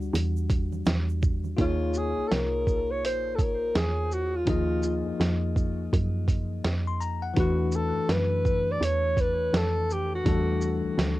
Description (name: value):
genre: hip hop, jazz-hop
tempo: 83 BPM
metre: 4/4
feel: swing 62% on 16ths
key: unclear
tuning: A4 = 440 Hz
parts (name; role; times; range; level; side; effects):
- bell-like tine electric piano; accompaniment; 0.0-11.2 s; E3 to C6; -32 LUFS; left 5 dB; medium stereo tremolo, cassette tape
- woody FM bass; bass; 0.0-11.2 s; Bb1 to Gb2; -29 LUFS; right 1 dB; none
- tube shaker and congas; percussion; 0.0-1.6 s; none; -40 LUFS; right 9 dB; none
- lo-fi sampler-style drum kit; drums; 0.2-11.2 s; hi-hat, kick drum, shaker, snare drum; -27 LUFS; right 1 dB; cassette tape
- mellow alto saxophone; melody; 1.6-10.8 s; F4 to D5; -28 LUFS; equal; cassette tape, tape echo
room: little or no reverb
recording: home recording on cassette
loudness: -24 LUFS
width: side -17 dB against mid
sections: 0.0-1.6 A section; 1.6-11.2 B section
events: tine electric piano solo 0.0-1.6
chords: 0.0 Em9; 1.6 Ebm9; 7.4 Em9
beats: 0.14 0.86 | 1.58 2.31 3.03 3.75 | 4.48 5.20 5.92 6.64 | 7.37 8.09 8.81 9.54 | 10.26 10.98